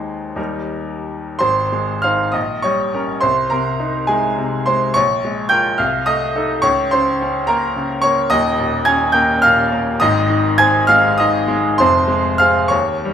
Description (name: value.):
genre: classical, romantic character piece for solo piano.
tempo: 57-73 BPM (dotted quarters).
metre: 6/8.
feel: rubato.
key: Ab major.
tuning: A4 = 439 Hz.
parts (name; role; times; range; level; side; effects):
bright baby grand piano; solo; 0.0-13.1 s; Eb1 to Ab6; -14 LUFS; equal; none.
room: wet recital hall reverb, RT60 1.6 s.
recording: minimal, uncompressed stereo recording.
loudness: -14 LUFS.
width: side -8 dB against mid.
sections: 0.0-1.4 A section; 1.4-13.1 B section.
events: none.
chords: 0.4 Eb; 1.4 Ab; 2.4 Gdim/Bb; 3.2 Ab/C; 5.0 Bbm7; 5.8 Adim/C; 6.6 Bbm/Db; 8.3 Eb7; 10.0 Ab; 11.8 Fm.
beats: 0.38 | 1.41 2.35 | 3.23 4.10 | 4.97 5.80 | 6.64 7.47 | 8.32 9.15 | 10.01 10.89 | 11.79 12.73.